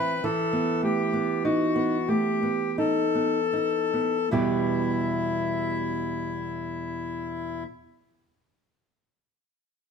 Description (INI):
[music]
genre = romantic duo for bandoneon and classical guitar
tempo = 38-54 BPM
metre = 3/4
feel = rubato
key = E minor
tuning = A4 = 442 Hz
[part]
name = bandoneon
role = melody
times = 0.0-7.6 s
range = E4 to B4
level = -27 LUFS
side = left 4 dB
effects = none
[part]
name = nylon-string guitar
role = accompaniment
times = 0.0-7.7 s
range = E2 to G4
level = -27 LUFS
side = right 2 dB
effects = none
[sound]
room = moderate large studio reverb, RT60 1.1 s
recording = band playing live in one room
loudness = -24 LUFS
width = side -6 dB against mid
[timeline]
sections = 0.0-4.3 A section; 4.3-8.9 B section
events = slowing down 0.0-4.3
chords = 0.2 B7/E; 4.3 Em